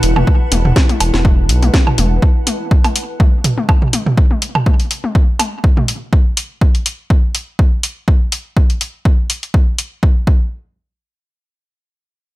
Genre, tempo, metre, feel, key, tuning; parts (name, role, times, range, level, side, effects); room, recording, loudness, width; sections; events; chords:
minimal techno; 123 BPM; 4/4; swing 54% on 16ths; A4 = 440 Hz
round analog bass; bass; 0.0-2.2 s; E1 to B1; -14 LUFS; equal; sidechain pumping
garage drum kit; drums; 0.0-9.9 s; hi-hat, snare drum; -18 LUFS; left 1 dB; small room reverb
granular cloud pad; texture; 0.0-2.2 s; E4 to A5; -24 LUFS; equal; built-in reverb, sidechain pumping
electronic toms and percussion blips; percussion; 0.2-5.9 s; -18 LUFS; right 1 dB; small room reverb, digital delay
electronic kick drum; drums; 0.3-10.4 s; -12 LUFS; equal; overdrive, small room reverb
digital ambience; -12 LUFS; side -18 dB against mid
0.0-10.0 A section; 10.0-12.4 B section
0.0 Esus4; 10.0 N.C.